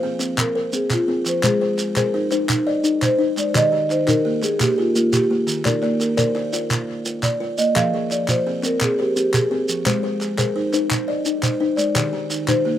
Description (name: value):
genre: southern african traditional, mbira-style interlocking cycle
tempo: 114 BPM (dotted quarters)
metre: 12/8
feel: straight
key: unclear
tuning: A4 = 436 Hz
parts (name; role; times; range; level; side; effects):
- marimba with soft mallets; melody; 0.0-12.8 s; F4 to F5; -22 LUFS; equal; none
- buzzing kalimba; arpeggios; 0.0-12.8 s; Eb3 to Eb5; -26 LUFS; right 4 dB; slapback echo
- kalimba; arpeggios; 0.0-12.8 s; Eb3 to D5; -24 LUFS; left 5 dB; slapback echo
- group handclap; percussion; 0.2-12.6 s; none; -28 LUFS; left 2 dB; slapback echo
- shekere; percussion; 0.2-12.6 s; none; -24 LUFS; right 2 dB; none
room: little or no reverb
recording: recorded outdoors, with no room sound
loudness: -18 LUFS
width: side -11 dB against mid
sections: 0.0-12.8 A section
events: none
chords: 0.0 Fm; 1.4 Ab; 3.5 Eb; 5.7 Bb; 7.8 Fm; 9.9 Ab; 12.0 Eb